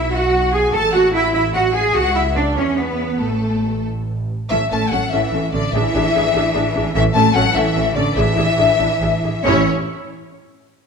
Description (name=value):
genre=quick classical-period movement for string orchestra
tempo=88-101 BPM (dotted quarters)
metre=6/8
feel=rubato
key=A major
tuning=A4 = 440 Hz
part: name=warm symphonic violin section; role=melody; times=0.0-9.7 s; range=A4 to A5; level=-23 LUFS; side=left 8 dB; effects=none
part: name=warm symphonic violin section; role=second line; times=0.0-9.7 s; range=A4 to A5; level=-22 LUFS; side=left 3 dB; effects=none
part: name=warm studio viola section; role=accompaniment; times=0.0-9.7 s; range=A3 to A4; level=-22 LUFS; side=right 1 dB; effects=none
part: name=rich symphonic cello section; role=bass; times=0.0-9.7 s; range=D3 to A4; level=-20 LUFS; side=right 2 dB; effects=none
part: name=rich symphonic double bass section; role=bass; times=0.0-9.7 s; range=A1 to E2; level=-22 LUFS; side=right 3 dB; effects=none
room=moderate scoring stage reverb, RT60 1.7 s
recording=dark, warm production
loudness=-15 LUFS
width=side -5 dB against mid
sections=0.0-4.5 A section; 4.5-9.5 B section; 9.5-10.8 C section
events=slowing down 6.4-9.5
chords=0.0 E/B; 0.7 A5; 2.0 Dmaj9/C#; 2.6 E5; 3.2 N.C.; 4.5 A; 5.7 E7/A; 6.9 A; 8.2 E7/A; 9.5 A